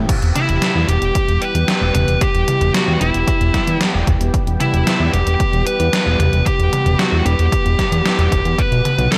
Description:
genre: synthwave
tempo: 113 BPM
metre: 4/4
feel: straight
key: E minor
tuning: A4 = 439 Hz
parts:
  - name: lush unison pad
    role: sustained chords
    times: 0.0-9.2 s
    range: D#3 to G4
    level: -27 LUFS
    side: equal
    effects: chorus, sidechain pumping
  - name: fat analog bass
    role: bass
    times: 0.0-9.1 s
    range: E1 to E2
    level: -19 LUFS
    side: equal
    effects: none
  - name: electronic kick drum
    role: drums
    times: 0.1-8.7 s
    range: none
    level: -21 LUFS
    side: equal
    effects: none
  - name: gated 80s digital drum machine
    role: drums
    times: 0.1-9.2 s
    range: crash cymbal, hi-hat, snare drum, toms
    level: -22 LUFS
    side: equal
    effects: gated reverb, gated reverb snare, overdrive
  - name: fuzz lead guitar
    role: melody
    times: 0.4-9.2 s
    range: E4 to B4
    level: -22 LUFS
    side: equal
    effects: distortion, delay
room: light reverb, digital ambience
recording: none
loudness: -16 LUFS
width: mono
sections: 0.0-9.2 A section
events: none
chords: 0.1 Em; 8.6 B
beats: | 0.09 0.62 1.15 1.68 | 2.21 2.75 3.28 3.81 | 4.34 4.87 5.40 5.93 | 6.46 6.99 7.52 8.05 | 8.59 9.12

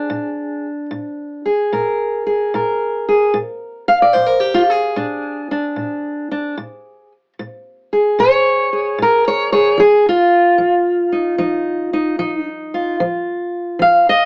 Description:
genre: acoustic country blues, solo or duo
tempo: 74 BPM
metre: 4/4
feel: swing 67% on 8ths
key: Bb mixolydian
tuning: A4 = 439 Hz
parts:
  - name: fingerpicked steel-string acoustic guitar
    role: solo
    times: 0.0-14.3 s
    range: Bb2 to F5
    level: -17 LUFS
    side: equal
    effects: none
room: light reverb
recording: worn, warbling old tape, cassette tape, warbly pitch drift, AM radio sound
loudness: -17 LUFS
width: mono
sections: 0.0-14.3 A section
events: steel-string acoustic guitar solo 0.0-14.3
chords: 0.0 Bb7; 9.8 F7(no3)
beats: | 0.10 0.91 1.72 2.53 | 3.34 4.15 4.96 5.77 | 6.57 7.38 8.19 8.99 | 9.79 10.60 11.40 12.20 | 13.00 13.80

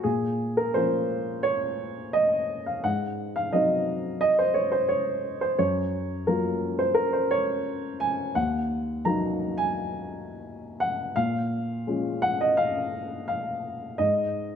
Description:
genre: neoclassical minimalist piano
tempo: 86 BPM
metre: 4/4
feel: rubato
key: unclear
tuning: A4 = 438 Hz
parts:
  - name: dark upright piano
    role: solo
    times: 0.0-14.6 s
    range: Eb2 to Bb5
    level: -24 LUFS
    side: equal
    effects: none
room: moderate scoring stage reverb, RT60 1.5 s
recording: dark, warm production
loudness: -24 LUFS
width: side -7 dB against mid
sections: 0.0-14.6 A section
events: none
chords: 0.0 Bbm; 2.8 Ab7; 5.6 Gbmaj7; 8.4 Ebm; 11.2 Bbm7; 14.0 Ab5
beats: | 0.04 0.74 1.44 2.14 | 2.84 3.52 4.21 4.91 | 5.60 6.28 6.96 7.66 | 8.36 9.06 9.76 10.47 | 11.17 11.88 12.58 13.28 | 13.99

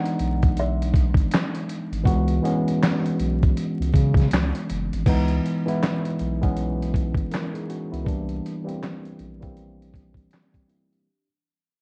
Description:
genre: lo-fi hip hop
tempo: 80 BPM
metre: 4/4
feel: swing 61% on 16ths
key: C# dorian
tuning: A4 = 440 Hz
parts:
  - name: kalimba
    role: melody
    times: 0.0-4.3 s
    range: E5 to F#5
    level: -36 LUFS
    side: equal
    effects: low-pass filter, tape echo
  - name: tine electric piano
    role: accompaniment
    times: 0.0-11.3 s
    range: E3 to A#4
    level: -28 LUFS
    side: equal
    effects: cassette tape, low-pass filter
  - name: dusty soul sampler-style drum kit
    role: drums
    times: 0.1-11.1 s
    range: crash cymbal, handclaps, hi-hat, kick drum, snare drum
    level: -25 LUFS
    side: equal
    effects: none
  - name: saturated sub bass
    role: bass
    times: 0.2-10.3 s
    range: F#1 to C#3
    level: -28 LUFS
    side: equal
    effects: none
room: light reverb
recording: worn, warbling old tape, cassette tape, vinyl crackle, warbly pitch drift, nothing above 10.3 kHz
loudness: -23 LUFS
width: mono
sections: 0.0-5.1 A section; 5.1-11.1 B section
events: fade-out 5.1-11.1; filter sweep on tine electric piano 5.1-11.1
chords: 0.0 C#m7; 8.1 C9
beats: 0.56 1.31 | 2.06 2.81 3.56 4.31 | 5.06 5.81 6.56 7.31 | 8.06 8.81 9.56 10.31

